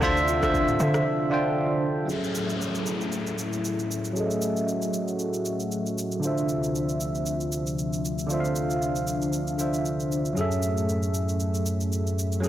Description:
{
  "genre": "amapiano",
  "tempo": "116 BPM",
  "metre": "4/4",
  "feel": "swing 55% on 16ths",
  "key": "unclear",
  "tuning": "A4 = 439 Hz",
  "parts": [
    { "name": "bell-like tine electric piano", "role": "accompaniment", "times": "0.0-12.5 s", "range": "D3 to G5", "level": "-26 LUFS", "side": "right 1 dB", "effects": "phaser, low-pass filter" },
    { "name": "warm analog pad", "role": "sustained chords", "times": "0.0-12.5 s", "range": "D2 to E5", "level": "-32 LUFS", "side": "left 3 dB", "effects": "chorus, low-pass filter" },
    { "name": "percussive organ stab", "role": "stabs", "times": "0.0-1.0 s", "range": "F4 to E5", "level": "-33 LUFS", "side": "left 4 dB", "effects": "chorus, tape echo" },
    { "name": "hollow log drum bass", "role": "bass", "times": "0.0-1.0 s", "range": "D2 to D3", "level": "-28 LUFS", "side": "equal", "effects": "none" },
    { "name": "afro-pop drum kit", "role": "drums", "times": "0.0-12.5 s", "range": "kick drum, rim click, shaker, toms", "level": "-34 LUFS", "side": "equal", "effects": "soft clipping on snare" },
    { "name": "downlifter", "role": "sound effects", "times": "2.1-6.2 s", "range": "none", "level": "-37 LUFS", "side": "left 3 dB", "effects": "none" },
    { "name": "warm sub bass", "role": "bass", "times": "10.4-12.5 s", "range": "F#2", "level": "-27 LUFS", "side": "equal", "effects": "none" }
  ],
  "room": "light reverb, digital ambience",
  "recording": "blown-out, overdriven recording, overdrive",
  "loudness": "-24 LUFS",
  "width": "side -12 dB against mid",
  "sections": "0.0-2.1 A section; 2.1-12.5 B section",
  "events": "drop 0.0-2.1; break 1.1-2.1; filter sweep 2.1-12.5; kick muted 9.3-10.4",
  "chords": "0.0 Dm9; 2.1 F#m9; 6.2 Dm9; 10.4 F#m9",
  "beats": "| 0.03 0.54 1.06 1.58 | 2.09 2.61 3.13 3.65 | 4.16 4.68 5.20 5.71 | 6.23 6.75 7.27 7.78 | 8.30 8.82 9.34 9.85 | 10.37 10.89 11.40 11.92 | 12.44"
}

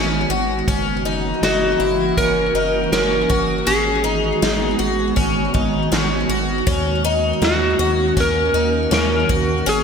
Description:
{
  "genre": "dream pop",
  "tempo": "80 BPM",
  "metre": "4/4",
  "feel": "straight",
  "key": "G# minor",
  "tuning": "A4 = 445 Hz",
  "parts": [
    { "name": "ethereal airy pad", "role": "sustained chords", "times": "0.0-9.8 s", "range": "D#3 to F#4", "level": "-22 LUFS", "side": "right 2 dB", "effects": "ensemble chorus, built-in reverb, shimmer reverb" },
    { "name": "picked twelve-string acoustic guitar", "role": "arpeggios", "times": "0.0-9.8 s", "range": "C#4 to F#4", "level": "-22 LUFS", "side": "left 5 dB", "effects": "wide subtle chorus, shimmer reverb, ping-pong delay" },
    { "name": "round analog bass", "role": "bass", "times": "0.0-9.8 s", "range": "F#1 to D#2", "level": "-26 LUFS", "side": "equal", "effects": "none" },
    { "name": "raw garage drum kit", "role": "drums", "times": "0.7-9.8 s", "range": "hi-hat, kick drum, snare drum", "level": "-24 LUFS", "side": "equal", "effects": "none" },
    { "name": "electric slide guitar", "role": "melody", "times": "1.4-9.8 s", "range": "F#4 to A#4", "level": "-20 LUFS", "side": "equal", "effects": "shimmer reverb, ping-pong delay" },
    { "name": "worn celesta", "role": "texture", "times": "7.4-8.6 s", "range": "D#5", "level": "-34 LUFS", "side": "left 2 dB", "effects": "none" }
  ],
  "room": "moderate plate reverb, RT60 1.9 s, studio reverb",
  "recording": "bright 1980s-style digital production",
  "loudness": "-16 LUFS",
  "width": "side -6 dB against mid",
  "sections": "0.0-9.8 A section",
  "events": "none",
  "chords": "0.0 G#m7; 0.7 F#7; 3.7 G#m7; 6.7 D#m7",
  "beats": "| 0.67 1.42 2.17 2.92 | 3.67 4.42 5.17 5.92 | 6.67 7.42 8.17 8.92 | 9.67"
}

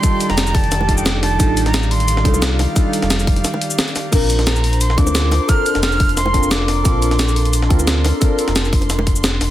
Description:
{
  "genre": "liquid drum and bass",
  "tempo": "176 BPM",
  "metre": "4/4",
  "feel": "swing 53% on 16ths",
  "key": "unclear",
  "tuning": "A4 = 437 Hz",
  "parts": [
    { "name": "breathy silver concert flute", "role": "melody", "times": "0.0-2.4, 4.5-7.5 s", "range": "G5 to F6", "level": "-22 LUFS", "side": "right 2 dB", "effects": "digital delay" },
    { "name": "deep mellow chord stab", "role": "accompaniment", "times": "0.0-9.5 s", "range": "G3 to Bb4", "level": "-22 LUFS", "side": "equal", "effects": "chorus, phaser, digital delay" },
    { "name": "airy breathy pad", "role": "sustained chords", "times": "0.0-9.5 s", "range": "Eb3 to C6", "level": "-26 LUFS", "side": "left 1 dB", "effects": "chorus" },
    { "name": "breakbeat sampler-style drum kit", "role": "drums", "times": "0.0-9.5 s", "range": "crash cymbal, hi-hat, shaker, snare drum", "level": "-20 LUFS", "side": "equal", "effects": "studio reverb" },
    { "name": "electronic kick drum", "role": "drums", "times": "0.0-9.1 s", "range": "none", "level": "-16 LUFS", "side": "equal", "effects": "studio reverb" },
    { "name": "sub bass with octave", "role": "bass", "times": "0.3-9.5 s", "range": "F1 to D2", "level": "-18 LUFS", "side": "equal", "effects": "tube saturation" },
    { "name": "bongos", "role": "percussion", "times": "0.8-9.1 s", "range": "none", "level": "-26 LUFS", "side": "right 1 dB", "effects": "none" }
  ],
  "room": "digital ambience",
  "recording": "dense, heavily limited modern master",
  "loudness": "-14 LUFS",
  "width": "side -13 dB against mid",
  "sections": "0.0-9.5 A section",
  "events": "break 3.4-4.1",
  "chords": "0.0 F13; 4.1 Bbmaj9",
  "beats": "| 0.03 0.38 0.72 1.06 | 1.40 1.74 2.08 2.42 | 2.76 3.10 3.44 3.78 | 4.12 4.47 4.81 5.15 | 5.49 5.83 6.17 6.51 | 6.85 7.19 7.53 7.88 | 8.22 8.56 8.90 9.24"
}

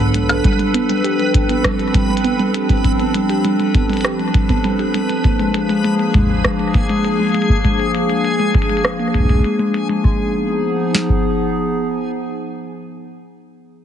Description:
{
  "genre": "IDM",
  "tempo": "100 BPM",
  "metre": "4/4",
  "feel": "straight",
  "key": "unclear",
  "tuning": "A4 = 440 Hz",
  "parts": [
    { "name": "warbly tape-like pad", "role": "sustained chords", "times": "0.0-13.2 s", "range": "F3 to A4", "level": "-20 LUFS", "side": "equal", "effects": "chorus, built-in reverb" },
    { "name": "harp-like synth pluck", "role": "arpeggios", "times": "0.0-10.3 s", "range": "Ab2 to Ab4", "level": "-20 LUFS", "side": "equal", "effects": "chorus, cassette tape, ping-pong delay" },
    { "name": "backwards swelling texture", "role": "texture", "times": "0.0-10.1 s", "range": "Ab4 to Cb5", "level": "-25 LUFS", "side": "left 1 dB", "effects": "built-in reverb" },
    { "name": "glitchy drum kit", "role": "drums", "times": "0.1-10.0 s", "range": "hi-hat, percussion blips, rim click", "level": "-23 LUFS", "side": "equal", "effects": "low-pass filter on hats, low-pass filter on perc, low-pass filter on snare, low-pass filter on room, ping-pong delay" },
    { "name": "booming analog drum machine", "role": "drums", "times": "0.4-11.2 s", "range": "kick drum, snare drum", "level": "-17 LUFS", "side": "equal", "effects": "none" }
  ],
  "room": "light reverb",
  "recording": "heavily compressed radio sound, multiband compression, nothing above 10.9 kHz",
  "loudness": "-14 LUFS",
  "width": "side -9 dB against mid",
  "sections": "0.0-10.0 A section; 10.0-12.4 B section",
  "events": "filter sweep on drum 0.0-10.0; filter sweep on synth pluck 0.0-10.0",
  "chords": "0.4 Dm7; 5.2 Bb7; 10.0 Abm6",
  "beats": "| 0.44 1.04 1.64 2.24 | 2.84 3.44 4.04 4.64 | 5.24 5.84 6.44 7.04 | 7.64 8.24 8.84 9.44 | 10.04 10.64 11.24 11.84"
}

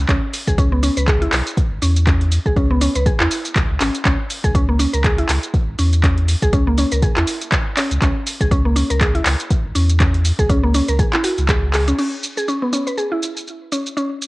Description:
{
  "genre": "afro house",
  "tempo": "121 BPM",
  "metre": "4/4",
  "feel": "swing 57% on 16ths",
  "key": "C# dorian",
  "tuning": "A4 = 440 Hz",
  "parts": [
    { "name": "warm sub bass", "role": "bass", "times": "0.0-11.9 s", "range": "G#1 to E2", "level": "-18 LUFS", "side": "equal", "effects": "sidechain pumping" },
    { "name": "mallet-like synth pluck", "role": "arpeggios", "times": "0.1-14.1 s", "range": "A#3 to B4", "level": "-21 LUFS", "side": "equal", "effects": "chorus, sidechain pumping, analog delay" },
    { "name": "afro-pop drum kit", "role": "drums", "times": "0.1-14.3 s", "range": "crash cymbal, handclaps, hi-hat, shaker", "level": "-22 LUFS", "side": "equal", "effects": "cassette tape" },
    { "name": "electronic kick drum", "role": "drums", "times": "0.1-11.6 s", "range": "none", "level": "-18 LUFS", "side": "equal", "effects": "cassette tape" }
  ],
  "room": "light reverb, digital ambience",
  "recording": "home recording on cassette",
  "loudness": "-15 LUFS",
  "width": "side -21 dB against mid",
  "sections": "0.0-12.0 A section; 12.0-14.3 B section",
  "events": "none",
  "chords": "0.0 C#m7; 4.1 F# (rootless); 12.0 C#7(no3)",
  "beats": "| 0.09 0.58 1.08 1.57 | 2.07 2.56 3.06 3.56 | 4.05 4.55 5.04 5.54 | 6.04 6.53 7.03 7.52 | 8.02 8.52 9.01 9.51 | 10.00 10.50 10.99 11.49 | 11.99 12.48 12.98 13.47 | 13.97"
}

